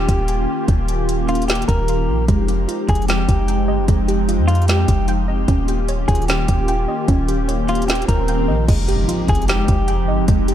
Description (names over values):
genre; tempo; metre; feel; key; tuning
hip hop, atmospheric cloud-rap; 150 BPM; 4/4; half-time; F minor; A4 = 440 Hz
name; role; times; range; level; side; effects
clean electric guitar; melody; 0.0-10.2 s; F4 to Bb4; -25 LUFS; left 1 dB; low-pass filter, ping-pong delay
hollow soft pad; sustained chords; 0.0-10.5 s; Eb3 to G4; -22 LUFS; left 1 dB; ensemble chorus, sidechain pumping
warm 808-style bass; bass; 0.0-10.5 s; Eb1 to F2; -19 LUFS; equal; none
smooth R&B drum kit; drums; 0.1-10.5 s; crash cymbal, hi-hat, kick drum, snare drum; -20 LUFS; equal; none
soft round pluck; arpeggios; 2.3-10.5 s; Ab3 to G5; -26 LUFS; right 4 dB; chorus, low-pass filter, ping-pong delay
swell and impact; sound effects; 7.7-10.3 s; none; -29 LUFS; equal; none
room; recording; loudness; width
little or no reverb; none; -15 LUFS; side -10 dB against mid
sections
0.0-8.7 A section; 8.7-10.5 B section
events
swell 7.7-8.7; impact 8.7-10.3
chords
0.0 Eb7; 2.3 Fm9; 5.5 Eb7; 8.7 Fm9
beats
0.28 | 0.68 1.08 1.48 1.88 | 2.28 2.68 3.08 3.48 | 3.88 4.28 4.68 5.08 | 5.48 5.88 6.28 6.68 | 7.08 7.48 7.88 8.28 | 8.68 9.08 9.48 9.88 | 10.28